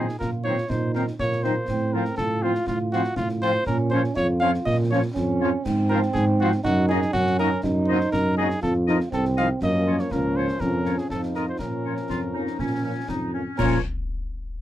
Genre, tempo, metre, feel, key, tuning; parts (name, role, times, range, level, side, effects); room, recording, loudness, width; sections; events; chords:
military-style march for wind band; 121 BPM; 2/4; straight; Bb minor; A4 = 440 Hz
dark cornet; melody; 0.0-13.8 s; F4 to F5; -27 LUFS; equal
clear woodwind section; second line; 0.0-13.8 s; Db4 to Eb5; -30 LUFS; left 2 dB
warm euphonium; second line; 0.0-13.3 s; Bb3 to F4; -29 LUFS; right 3 dB
mellow French horn section; accompaniment; 0.0-13.8 s; F3 to F4; -30 LUFS; left 2 dB
mellow trombone section; sustained chords; 0.0-13.8 s; Eb3 to Eb4; -29 LUFS; left 1 dB
mellow tuba; bass; 0.0-13.8 s; C2 to Bb2; -24 LUFS; right 1 dB
concert snare drum, concert bass drum and clash cymbals; drums; 0.1-13.9 s; -34 LUFS; left 1 dB
light reverb; dark, warm production; -21 LUFS; side -13 dB against mid
0.0-13.6 A section
0.0 Cm7b5/Bb; 1.7 F/A; 3.7 Bbm; 5.7 Fm/Ab; 6.6 Ebm/Gb; 7.6 Cm7b5/Gb; 8.6 F5; 9.6 Gbmaj7; 10.6 Bbm/F; 11.1 F7; 11.6 Bbm